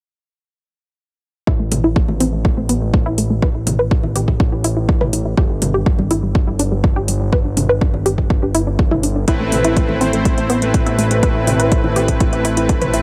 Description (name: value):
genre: progressive house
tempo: 123 BPM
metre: 4/4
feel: straight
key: A minor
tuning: A4 = 442 Hz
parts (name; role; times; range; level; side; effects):
- unison pluck; arpeggios; 1.5-13.0 s; G3 to B4; -23 LUFS; equal; sidechain pumping, digital delay
- fat analog bass; bass; 1.5-13.0 s; G1 to A1; -22 LUFS; equal; sidechain pumping
- electronic kick drum; drums; 1.5-12.8 s; none; -18 LUFS; equal; overdrive
- electronic hi-hat; drums; 1.7-13.0 s; none; -26 LUFS; equal; overdrive, sidechain pumping on hats
- electronic toms and congas; percussion; 1.7-12.9 s; none; -27 LUFS; equal; overdrive, sidechain pumping on toms, sidechain pumping on perc
- soft supersaw; stabs; 9.3-13.0 s; A3 to C5; -21 LUFS; equal; sidechain pumping, digital delay
room: little or no reverb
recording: none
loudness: -16 LUFS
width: mono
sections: 1.5-13.0 A section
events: filter sweep on synth pluck 1.5-13.0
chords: 1.5 A5; 5.4 G5; 9.3 Amadd9